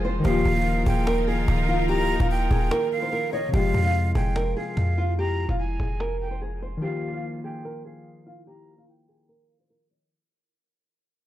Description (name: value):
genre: hip hop, trap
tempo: 146 BPM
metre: 4/4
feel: half-time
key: unclear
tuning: A4 = 440 Hz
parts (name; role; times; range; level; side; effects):
- nylon-string guitar; melody; 0.0-10.1 s; F4 to Db5; -29 LUFS; equal; none
- soft electric-piano-like synth keys; accompaniment; 0.0-10.1 s; C3 to F4; -30 LUFS; left 2 dB; chorus
- muted chamber string section; sustained chords; 0.0-3.5 s; Eb3 to C5; -33 LUFS; left 1 dB; none
- clean 808-style bass; bass; 0.0-6.8 s; Db1 to F2; -25 LUFS; equal; none
- cajon; drums; 0.0-6.7 s; none; -30 LUFS; equal; none
- breathy jazz flute; second line; 0.2-10.1 s; Eb5 to Bb5; -31 LUFS; right 4 dB; tape echo
room: small room ambience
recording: low-pass filter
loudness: -22 LUFS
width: side -13 dB against mid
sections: 0.0-3.5 A section; 3.5-10.1 B section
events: break 2.7-3.5; fade-out 3.5-10.1; filter sweep 3.5-10.1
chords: 0.2 Ebsus2; 3.5 Fm; 6.8 Ebsus2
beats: | 0.25 0.66 1.07 1.48 | 1.89 2.30 2.71 3.13 | 3.54 3.95 4.36 4.77 | 5.18 5.59 6.00 6.41 | 6.82 7.24 7.65 8.06 | 8.47 8.88 9.29 9.70